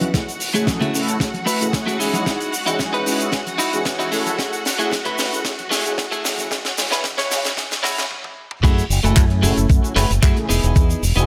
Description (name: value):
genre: nu-disco, nu disco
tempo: 113 BPM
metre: 4/4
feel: straight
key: F# dorian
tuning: A4 = 440 Hz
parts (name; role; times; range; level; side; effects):
- clear symphonic string section; sustained chords; 0.0-8.1 s; F#4 to F#5; -30 LUFS; equal; sidechain pumping
- clean electric guitar; riff; 0.0-11.3 s; A3 to E5; -26 LUFS; equal; analog chorus, low-pass filter, delay
- fingered electric bass with an envelope filter; bass; 0.0-11.2 s; E1 to C#3; -25 LUFS; equal; sidechain pumping, high-pass filter
- tight funk drum kit; drums; 0.0-11.3 s; crash cymbal, handclaps, hi-hat, shaker, snare drum, toms; -26 LUFS; equal; none
- congas; percussion; 0.0-7.8 s; none; -32 LUFS; equal; none
- mellow synth brass; accompaniment; 0.1-11.3 s; E3 to G#5; -29 LUFS; equal; chorus, sidechain pumping, delay
- electronic kick drum; drums; 0.1-10.9 s; none; -19 LUFS; equal; none
room: light reverb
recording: high-pass filter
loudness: -19 LUFS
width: mono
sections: 0.0-8.6 A section; 8.6-11.3 B section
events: build-up 0.0-8.6; filter sweep 0.0-8.6; drum fill 0.1-8.1, 8.1-8.6; stop 8.1-8.6; drop 8.6-11.3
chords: 0.1 F#m9; 2.0 Emaj7; 4.1 F#m9; 6.5 C#m; 8.6 F#m9; 10.5 Emaj7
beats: | 0.14 0.67 1.20 1.73 | 2.26 2.79 3.33 3.86 | 4.39 4.92 5.45 5.98 | 6.51 7.04 7.57 8.10 | 8.63 9.17 9.70 10.23 | 10.76